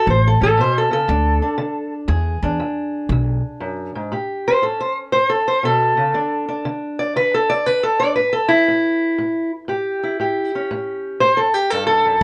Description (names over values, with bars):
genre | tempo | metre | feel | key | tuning
acoustic country blues, solo or duo | 119 BPM | 4/4 | swing 67% on 8ths | A mixolydian | A4 = 441 Hz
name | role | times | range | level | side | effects
fingerpicked steel-string acoustic guitar | melody | 0.0-12.2 s | E2 to D5 | -19 LUFS | equal | none
upright bass | bass | 0.1-3.4, 12.2 s | A1 to E2 | -20 LUFS | equal | none
room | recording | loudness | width
moderate studio reverb, RT60 0.6 s | nothing above 10.6 kHz | -19 LUFS | mono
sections
0.0-4.1 A section; 4.1-12.2 A section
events
steel-string acoustic guitar solo 0.0-12.2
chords
0.1 A; 1.1 D5; 2.1 E7; 4.1 A7; 6.1 N.C.; 8.2 A7